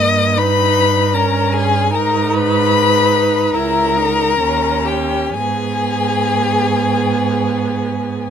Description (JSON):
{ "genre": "classical, slow romantic movement for string quartet", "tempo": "61-80 BPM", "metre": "4/4", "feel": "rubato", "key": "G# minor", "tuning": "A4 = 442 Hz", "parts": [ { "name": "rich violin", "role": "melody", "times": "0.0-8.3 s", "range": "G5 to D#6", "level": "-19 LUFS", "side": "left 9 dB", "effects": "none" }, { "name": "warm violin", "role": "second line", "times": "0.0-8.3 s", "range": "G4 to D#5", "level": "-18 LUFS", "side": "left 3 dB", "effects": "none" }, { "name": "warm viola", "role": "accompaniment", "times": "0.0-8.3 s", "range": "A#3 to E4", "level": "-20 LUFS", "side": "right 4 dB", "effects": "none" }, { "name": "rich cello", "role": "bass", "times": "0.0-8.3 s", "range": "C#2 to G#2", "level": "-20 LUFS", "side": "right 5 dB", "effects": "none" } ], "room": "little or no reverb", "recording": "close, detailed microphones", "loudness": "-13 LUFS", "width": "side -8 dB against mid", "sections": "0.0-8.3 A section", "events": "none", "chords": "0.0 D#7/G; 1.9 G#m; 3.6 C#m; 4.4 D#7; 5.3 G#m", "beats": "0.39 1.15 | 1.95 2.75 3.56 4.41 | 5.35 6.32 7.24 8.11" }